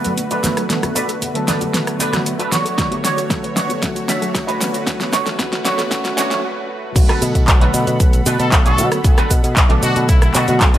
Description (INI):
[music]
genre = nu-disco, nu disco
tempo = 115 BPM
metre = 4/4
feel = straight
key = unclear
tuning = A4 = 441 Hz
[part]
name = tine electric piano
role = accompaniment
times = 0.0-10.7 s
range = D3 to C#5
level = -23 LUFS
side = equal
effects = lush chorus, sidechain pumping, tape echo
[part]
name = lush unison pad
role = sustained chords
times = 0.0-10.8 s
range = D3 to B5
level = -27 LUFS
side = equal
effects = chorus, sidechain pumping
[part]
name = analog pluck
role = arpeggios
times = 0.0-6.4 s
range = B3 to C#5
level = -30 LUFS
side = left 2 dB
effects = none
[part]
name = electric guitar with an envelope filter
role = riff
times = 0.0-10.8 s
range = D4 to E5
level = -23 LUFS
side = right 3 dB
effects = ensemble chorus, low-pass filter, tape echo
[part]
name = pop drum kit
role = drums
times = 0.0-10.8 s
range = cabasa, crash cymbal, handclaps, hi-hat, rim click, snare drum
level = -21 LUFS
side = equal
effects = studio ambience
[part]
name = egg shaker and congas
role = percussion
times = 0.1-6.4 s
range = none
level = -29 LUFS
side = left 1 dB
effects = none
[part]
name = electronic kick drum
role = drums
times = 2.8-10.7 s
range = none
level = -14 LUFS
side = equal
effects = studio ambience
[part]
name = picked electric bass with an envelope filter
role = bass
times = 7.0-10.8 s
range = B1 to B2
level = -18 LUFS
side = equal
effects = tube saturation
[part]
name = brilliant trumpet section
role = melody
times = 8.4-10.6 s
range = E4 to A4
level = -24 LUFS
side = left 3 dB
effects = tape echo
[sound]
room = light reverb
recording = high-pass filter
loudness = -14 LUFS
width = side -12 dB against mid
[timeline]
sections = 0.0-7.0 A section; 7.0-10.8 B section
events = build-up 0.0-7.0; drum fill 0.0-6.4; break 6.4-7.0; drop 7.0-10.8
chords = 0.0 Bm7; 2.5 Dmaj7; 7.0 Bm7